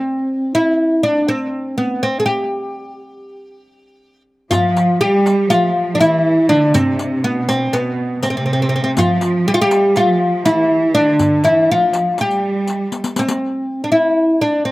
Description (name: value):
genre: Turkish makam ensemble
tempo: 242 BPM (eighths)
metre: 9/8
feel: straight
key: G makam hicaz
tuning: A4 = 445 Hz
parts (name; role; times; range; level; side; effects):
- oud; melody; 0.0-14.7 s; B3 to Ab4; -15 LUFS; equal; slapback echo
- rich studio cello section; second line; 4.5-13.1 s; B2 to G3; -20 LUFS; right 2 dB; none
- darbuka; percussion; 4.5-13.4 s; none; -25 LUFS; equal; none
- riq; percussion; 4.5-13.4 s; none; -26 LUFS; left 3 dB; none
room: little or no reverb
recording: recorded outdoors, with no room sound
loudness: -13 LUFS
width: side -18 dB against mid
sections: 0.0-4.5 A section; 4.5-13.4 B section; 13.4-14.7 A section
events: drum fill 12.9-13.4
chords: none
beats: | 0.06 0.30 0.55 0.80 1.05 1.30 1.54 1.79 2.04 | 2.29 2.54 2.79 3.03 3.28 3.53 3.78 4.02 4.27 | 4.52 4.77 5.01 5.26 5.51 5.75 6.00 6.25 6.50 | 6.74 6.99 7.24 7.48 7.73 7.98 8.22 8.47 8.72 | 8.96 9.21 9.46 9.71 9.95 10.20 10.45 10.69 10.94 | 11.19 11.44 11.68 11.93 12.18 12.43 12.67 12.92 13.17 | 13.42 13.66 13.91 14.16 14.41 14.66